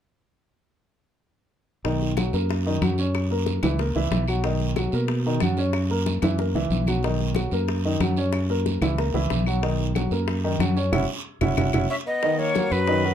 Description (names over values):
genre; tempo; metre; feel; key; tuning
Afro-Cuban jazz; 185 BPM; 4/4; straight; B major; A4 = 441 Hz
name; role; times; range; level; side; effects
warm baby grand piano; accompaniment; 1.8-13.1 s; D#3 to D#5; -26 LUFS; equal; none
fingered electric bass; bass; 1.8-13.1 s; F#1 to B2; -24 LUFS; equal; none
bongos; percussion; 1.8-13.0 s; none; -34 LUFS; left 8 dB; none
congas; percussion; 1.8-13.1 s; none; -30 LUFS; left 1 dB; none
guiro; percussion; 1.9-13.1 s; none; -38 LUFS; right 6 dB; none
claves; percussion; 2.2-12.7 s; none; -36 LUFS; left 4 dB; none
breathy bright jazz flute; melody; 11.9-13.1 s; B4 to E5; -24 LUFS; left 1 dB; none
breathy tenor saxophone; second line; 11.9-13.1 s; F#3 to C#4; -29 LUFS; left 6 dB; none
room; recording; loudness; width
light reverb; dark, warm production; -21 LUFS; side -9 dB against mid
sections
1.8-12.2 A section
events
drum fill 6.1-7.0, 11.4-12.2; band accent 10.9-12.2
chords
1.8 Bmaj7; 3.1 F#7; 4.4 Bmaj7; 5.7 F#7; 7.0 Bmaj7; 8.3 F#7; 9.6 Bmaj7; 10.9 F#5; 12.2 Bmaj7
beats
| 1.85 2.17 2.50 2.82 | 3.15 3.47 3.79 4.12 | 4.44 4.77 5.09 5.42 | 5.74 6.07 6.39 6.71 | 7.04 7.36 7.69 8.01 | 8.34 8.66 8.98 9.31 | 9.63 9.96 10.28 10.60 | 10.93 11.25 11.58 11.90 | 12.23 12.55 12.87